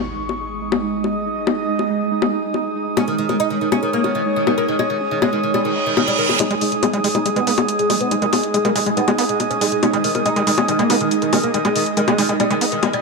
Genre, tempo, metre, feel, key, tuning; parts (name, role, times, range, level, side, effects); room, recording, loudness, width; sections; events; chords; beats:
psychedelic trance; 140 BPM; 4/4; straight; A4 = 441 Hz
pulsing gated texture; sustained chords; 0.0-13.0 s; G#3 to D#4; -23 LUFS; right 5 dB; chorus, built-in reverb
impact and reverse cymbal; sound effects; 0.0-1.3, 5.7-6.4 s; -24 LUFS; right 5 dB
airy breathy pad; texture; 0.0-13.0 s; G#3 to D#6; -22 LUFS; equal; chorus
electronic bongos and hi-hat; drums; 0.3-13.0 s; -22 LUFS; left 7 dB; high-pass filter on hats, small room ambience, high-pass filter on perc, high-pass filter on snare, high-pass filter on cymbals
oud; melody; 3.0-13.0 s; D#3 to D#4; -23 LUFS; left 1 dB; phaser, low-pass filter, tape echo
formant-sweep wobble bass; second line; 4.0-5.3 s; B3 to C#4; -37 LUFS; right 2 dB
overdriven acid bass; riff; 6.4-12.9 s; G#3 to B3; -23 LUFS; moving between left 1 dB and right 6 dB; distortion, auto-pan, dub echo
moderate lush hall reverb, RT60 2.0 s; -16 LUFS; side -3 dB against mid
0.0-6.4 A section; 6.4-13.0 B section
impact 0.0-1.3; filter sweep on synth texture 0.0-6.4, 6.4-13.0; reverse cymbal 5.7-6.4; build-up 6.4-13.0; filter sweep on acid bass 6.4-13.0; filter sweep on oud 6.4-13.0
0.0 G#5
0.40 0.83 | 1.26 1.68 2.11 2.54 | 2.97 3.40 3.83 4.26 | 4.68 5.11 5.54 5.97 | 6.40 6.83 7.26 7.68 | 8.11 8.54 8.97 9.40 | 9.83 10.26 10.68 11.11 | 11.54 11.97 12.40 12.83